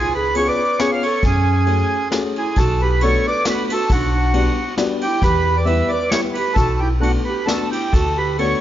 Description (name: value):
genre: musette waltz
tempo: 135 BPM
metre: 3/4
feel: swing 54% on 8ths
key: B minor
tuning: A4 = 439 Hz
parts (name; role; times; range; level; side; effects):
- accordion; melody; 0.0-8.6 s; F#4 to E#5; -20 LUFS; right 1 dB; none
- dark clarinet; second line; 0.0-8.6 s; C#4 to C#5; -24 LUFS; right 4 dB; none
- upright bass; bass; 0.0-8.5 s; B1 to F#2; -20 LUFS; equal; none
- vintage brush drum kit; drums; 0.3-8.5 s; kick drum, ride cymbal, snare drum; -24 LUFS; equal; none
- dark upright piano; accompaniment; 0.4-8.6 s; G3 to G#4; -24 LUFS; left 5 dB; none
room: light reverb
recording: nothing above 7.5 kHz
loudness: -16 LUFS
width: side -12 dB against mid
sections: 0.0-2.6 A section; 2.6-8.6 B section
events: none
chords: 0.0 C#7; 1.2 F#madd9; 2.6 Bm7; 3.9 Gmaj7/B; 5.2 Em; 6.6 Bm7; 7.9 D6